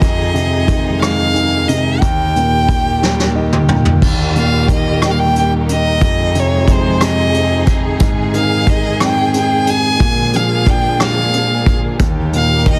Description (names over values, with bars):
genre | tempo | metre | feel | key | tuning
six-eight pop ballad | 60 BPM (dotted quarters) | 6/8 | straight | unclear | A4 = 442 Hz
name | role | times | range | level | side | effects
warm violin | melody | 0.0-12.8 s | C5 to Ab5 | -20 LUFS | equal | none
warm concert grand piano | accompaniment | 0.0-12.8 s | Eb2 to G5 | -18 LUFS | equal | none
dark studio string section | sustained chords | 0.0-12.8 s | C3 to Ab4 | -25 LUFS | equal | none
vintage brush drum kit | drums | 0.0-12.8 s | crash cymbal, hi-hat, kick drum, rim click, snare drum, toms | -18 LUFS | equal | none
room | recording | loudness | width
light reverb, studio ambience | dense, heavily limited modern master | -14 LUFS | mono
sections
0.0-4.0 A section; 4.0-12.8 B section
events
drum fill 3.0-4.0; grand piano fill 3.0-4.0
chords
0.0 Fm7; 2.0 Eb; 6.0 Fm7; 8.0 Ab; 10.0 Bb7; 12.0 Eb